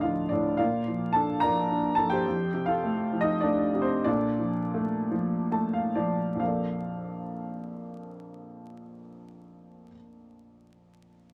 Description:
classical, lyrical solo piano; 64-109 BPM; 3/4; rubato; Bb major; A4 = 440 Hz
warm upright piano; solo; 0.0-11.3 s; Bb1 to Bb5; -28 LUFS; equal
wet small room reverb, RT60 0.5 s; vinyl crackle; -28 LUFS; mono
0.0-6.4 A section; 6.4-11.3 B section
slowing down 2.3-6.4; upright piano fill 5.1-6.4
0.0 Dm; 0.6 Bb; 2.3 F; 4.1 Bbmaj7

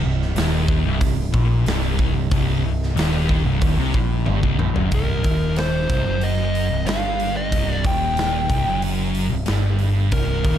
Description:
stoner and doom metal; 92 BPM; 4/4; straight; C minor; A4 = 440 Hz
thick fuzz guitar; riff; 0.0-10.6 s; C2 to C3; -24 LUFS; left 7 dB; distortion
thick fuzz guitar; riff; 0.0-10.6 s; C2 to C3; -25 LUFS; right 8 dB; distortion
growling picked electric bass; bass; 0.0-10.6 s; C1 to C2; -24 LUFS; equal; overdrive
big rock drum kit; drums; 0.2-10.6 s; hi-hat, kick drum, snare drum, toms; -24 LUFS; equal
fuzz lead guitar; melody; 4.9-10.6 s; Bb4 to G5; -24 LUFS; equal; distortion, slapback echo
light reverb, studio reverb; dark, warm production; -18 LUFS; side -10 dB against mid
0.0-4.9 A section; 4.9-10.6 B section
drum fill 4.3-4.9
0.0 Cm

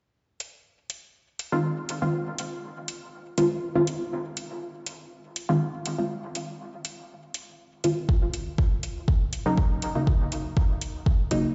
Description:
dub techno; 121 BPM; 4/4; straight; F phrygian; A4 = 439 Hz
electronic hi-hat; drums; 0.4-11.4 s; -37 LUFS; equal; overdrive
filtered dub chord stab; stabs; 1.5-11.5 s; Db3 to F4; -30 LUFS; equal; chorus, phaser, sidechain pumping, dub echo
electronic kick drum; drums; 8.1-11.2 s; -25 LUFS; equal; overdrive
moderate huge ambient reverb, RT60 4.3 s; played on a big sound system in a bare room, large studio reverb, nothing above 7.8 kHz; -27 LUFS; mono
0.2-11.5 A section
0.2 Fm7; 8.1 Ebm7

